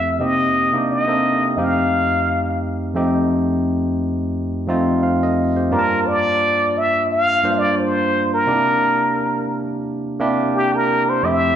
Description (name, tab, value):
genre	R&B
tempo	87 BPM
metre	4/4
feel	swing 57% on 16ths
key	unclear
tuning	A4 = 439 Hz
part	trumpet with plunger mute	melody	0.0-11.6 s	G4 to F5	-18 LUFS	equal	none
part	barky tine electric piano	accompaniment	0.0-11.6 s	F2 to A5	-19 LUFS	equal	none
room	wet large studio reverb, RT60 1.4 s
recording	band playing live in one room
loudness	-16 LUFS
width	side -9 dB against mid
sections	0.0-3.0 A section; 3.0-5.7 B section; 5.7-11.6 C section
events	none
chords	0.2 Cm7; 1.6 F7; 5.7 Gm7; 8.5 C7